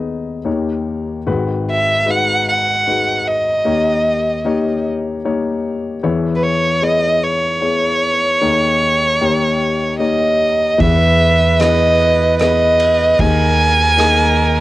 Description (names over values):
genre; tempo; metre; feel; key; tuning
acoustic folk-pop ballad; 75 BPM; 3/4; straight; unclear; A4 = 441 Hz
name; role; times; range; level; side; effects
warm grand piano; accompaniment; 0.0-14.6 s; G#1 to E5; -18 LUFS; left 4 dB; cassette tape
rich violin; melody; 1.7-14.6 s; B4 to G#5; -14 LUFS; right 1 dB; cassette tape
rich viola; second line; 10.8-14.6 s; A#4 to B4; -21 LUFS; right 7 dB; cassette tape
fingered electric bass; bass; 10.8-14.6 s; D#2 to E2; -17 LUFS; right 1 dB; none
unplugged drum kit; drums; 10.8-14.2 s; kick drum, ride cymbal, rim click; -24 LUFS; right 1 dB; cassette tape
room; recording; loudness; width
light reverb; home recording on cassette; -13 LUFS; side -16 dB against mid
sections
0.0-10.8 A section; 10.8-14.6 B section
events
none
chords
0.5 D#7; 1.3 G#m7; 3.7 D#7; 6.0 C#m7/E; 8.4 D#7sus4; 9.2 D#7; 10.8 Emaj7; 13.2 D#sus4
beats
0.47 | 1.27 2.07 2.87 | 3.66 4.45 5.24 | 6.03 6.82 7.62 | 8.41 9.21 10.01 | 10.81 11.60 12.40 | 13.19 13.98